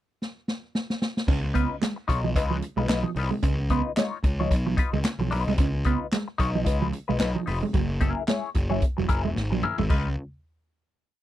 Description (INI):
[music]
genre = funk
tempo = 111 BPM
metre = 4/4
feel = swing 56% on 16ths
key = Db mixolydian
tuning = A4 = 440 Hz
[part]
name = vintage drum kit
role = drums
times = 0.2-10.0 s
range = crash cymbal, handclaps, hi-hat, kick drum, snare drum, toms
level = -26 LUFS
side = equal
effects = none
[part]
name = mellow electric guitar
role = riff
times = 1.3-10.1 s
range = F3 to Db4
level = -29 LUFS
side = right 6 dB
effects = none
[part]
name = fuzz picked electric bass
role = bass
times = 1.3-10.2 s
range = Fb1 to Db2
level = -27 LUFS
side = equal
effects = overdrive
[part]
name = semi-hollow electric guitar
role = accompaniment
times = 1.5-10.1 s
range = Eb4 to Db5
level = -29 LUFS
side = left 6 dB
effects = wah
[sound]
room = little or no reverb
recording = dry, close 1970s-style studio recording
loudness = -23 LUFS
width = side -13 dB against mid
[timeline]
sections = 0.0-1.3 pickup bar; 1.3-9.9 groove; 9.9-11.2 final chord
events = drum fill 0.2-1.3, 9.4-9.9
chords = 0.0 N.C.; 1.3 Db9; 7.7 Gb9; 9.9 Db9